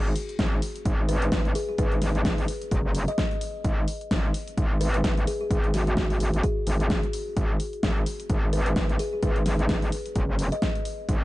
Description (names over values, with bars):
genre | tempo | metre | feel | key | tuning
bass house | 129 BPM | 4/4 | swing 57% on 16ths | G# minor | A4 = 440 Hz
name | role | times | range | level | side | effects
metallic wobble bass | bass | 0.0-11.2 s | F#1 to G#1 | -26 LUFS | equal | distortion, chorus, overdrive, sidechain pumping
big-room dance drum kit | drums | 0.2-11.2 s | hi-hat, snare drum | -31 LUFS | equal | none
electronic kick drum | drums | 0.4-11.2 s | none | -27 LUFS | equal | none
kalimba | melody | 1.1-10.9 s | F#4 to D#5 | -32 LUFS | left 1 dB | dub echo
room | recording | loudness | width
little or no reverb | nothing above 10.3 kHz | -23 LUFS | side -17 dB against mid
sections
0.0-11.2 A section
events
none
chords
none